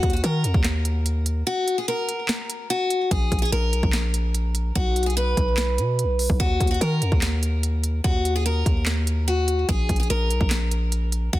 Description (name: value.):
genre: hip hop, trap.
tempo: 146 BPM.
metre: 4/4.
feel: half-time.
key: unclear.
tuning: A4 = 439 Hz.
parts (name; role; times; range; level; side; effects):
picked steel-string acoustic guitar; melody; 0.0-11.4 s; Gb4 to B4; -26 LUFS; left 1 dB; ping-pong delay.
hard-hitting 808-style bass; bass; 0.0-11.4 s; Bb1 to Eb3; -23 LUFS; equal; none.
trap drum kit; drums; 0.0-11.4 s; handclaps, hi-hat, kick drum, snare drum; -24 LUFS; equal; none.
room: little or no reverb.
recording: dense, heavily limited modern master.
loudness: -20 LUFS.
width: side -15 dB against mid.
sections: 0.0-11.4 A section.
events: break 1.5-3.1.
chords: 0.0 Ebm; 3.1 Absus2/Bb; 4.8 B5; 6.4 Ebm; 9.7 Absus2/Bb.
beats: 0.23 0.65 1.06 | 1.47 1.88 2.29 2.70 | 3.11 3.52 3.93 4.34 | 4.76 5.17 5.58 5.99 | 6.40 6.81 7.22 7.63 | 8.04 8.45 8.87 9.28 | 9.69 10.10 10.51 10.92 | 11.33.